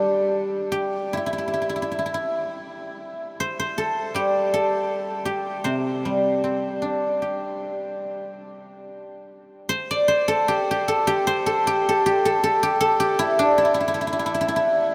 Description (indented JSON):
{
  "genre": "chinese traditional, Chinese solo plucked strings",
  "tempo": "78 BPM",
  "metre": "4/4",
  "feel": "rubato",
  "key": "C gong mode",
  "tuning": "A4 = 440 Hz",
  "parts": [
    { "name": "guzheng", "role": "solo", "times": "0.0-14.9 s", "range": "C3 to D5", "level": "-23 LUFS", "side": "equal", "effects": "none" }
  ],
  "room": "wet huge ambient reverb, RT60 7.8 s",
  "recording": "in a vast, echoing space",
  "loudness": "-23 LUFS",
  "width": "mono",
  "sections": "0.0-8.9 A section; 8.9-14.9 B section",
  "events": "none",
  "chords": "none",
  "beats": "0.35 1.11 1.87 | 2.63 3.40 4.16 4.90 | 5.65 6.42 7.22 8.05 | 8.89 9.70 10.48 11.27 | 12.04 12.80 13.56 14.31"
}